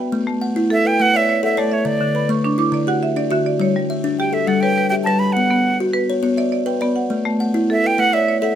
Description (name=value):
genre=southern african traditional, mbira-style interlocking cycle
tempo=137 BPM (dotted quarters)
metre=12/8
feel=straight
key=A mixolydian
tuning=A4 = 440 Hz
part: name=marimba with hard mallets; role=arpeggios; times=0.0-8.6 s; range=D3 to D6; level=-21 LUFS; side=right 3 dB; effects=none
part: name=buzzing kalimba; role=arpeggios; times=0.1-8.6 s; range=D3 to F#5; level=-19 LUFS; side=left 3 dB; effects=none
part: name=breathy bright concert flute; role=melody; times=0.7-8.6 s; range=C#5 to B5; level=-18 LUFS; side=right 3 dB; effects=plate reverb
room=moderate studio reverb, RT60 0.6 s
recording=none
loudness=-16 LUFS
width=side -10 dB against mid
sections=0.1-8.6 A section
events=marimba fill 2.0-3.6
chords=0.1 A; 1.9 D; 3.6 G; 5.4 Bm; 7.1 A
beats=| 0.12 0.55 0.99 1.42 | 1.86 2.30 2.73 3.17 | 3.60 4.04 4.48 4.91 | 5.35 5.79 6.23 6.66 | 7.10 7.54 7.98 8.42